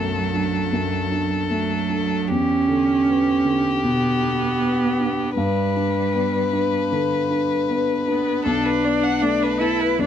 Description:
neoclassical piano and strings; 78 BPM; 4/4; rubato; B minor; A4 = 442 Hz
warm violin; melody; 0.0-10.1 s; G4 to F#5; -24 LUFS; left 5 dB
rich cello; second line; 0.0-10.1 s; F#3 to E4; -22 LUFS; right 4 dB
dark grand piano; accompaniment; 0.0-10.1 s; B1 to D4; -23 LUFS; left 1 dB
light reverb; dark, warm production; -18 LUFS; side -9 dB against mid
0.0-10.1 A section
0.0 Bm7; 2.3 Em7; 5.4 G; 8.5 Bm7

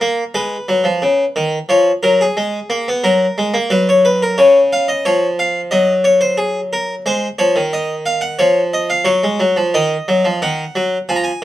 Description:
classical, baroque-style two-part invention for harpsichord; 89 BPM; 4/4; straight; A4 = 440 Hz
harpsichord; solo; 0.0-11.4 s; C#3 to Bb5; -13 LUFS; left 1 dB
light reverb; -13 LUFS; side -14 dB against mid
0.0-9.7 A section; 9.7-11.4 B section
0.3 G#m7; 1.7 C#/E#; 3.0 F#; 4.4 C#; 5.7 D#m7/F#; 7.1 G#7; 8.4 C#/E#; 9.7 Ebm

